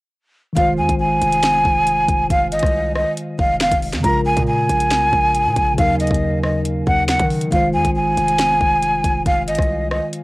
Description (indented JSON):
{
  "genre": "hip hop, drill",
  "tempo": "138 BPM",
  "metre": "4/4",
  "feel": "half-time",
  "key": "F phrygian",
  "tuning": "A4 = 440 Hz",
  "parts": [
    { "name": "mellow tine electric piano", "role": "accompaniment", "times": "0.5-10.2 s", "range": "Db3 to C5", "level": "-22 LUFS", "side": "equal", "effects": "medium stereo tremolo, cassette tape" },
    { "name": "breathy jazz flute", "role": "melody", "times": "0.6-10.1 s", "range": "Eb5 to Bb5", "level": "-17 LUFS", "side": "equal", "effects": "cassette tape" },
    { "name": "hard-hitting 808-style bass", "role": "bass", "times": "0.6-10.0 s", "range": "F1 to Eb3", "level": "-24 LUFS", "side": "equal", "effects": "none" },
    { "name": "drill drum kit", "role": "drums", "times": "0.6-10.2 s", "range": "finger snaps, hi-hat, kick drum, rim click, snare drum", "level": "-22 LUFS", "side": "equal", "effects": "none" }
  ],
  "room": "light reverb, digital ambience",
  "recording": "home recording on cassette",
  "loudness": "-15 LUFS",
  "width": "side -21 dB against mid",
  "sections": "0.6-10.2 A section",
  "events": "none",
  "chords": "0.6 Fm7; 4.0 Bbm7; 5.8 Ebm7; 7.5 Fm7",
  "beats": "| 0.56 1.00 1.43 1.87 | 2.30 2.74 3.17 3.61 | 4.04 4.48 4.91 5.35 | 5.78 6.22 6.65 7.09 | 7.52 7.96 8.39 8.82 | 9.26 9.70 10.13"
}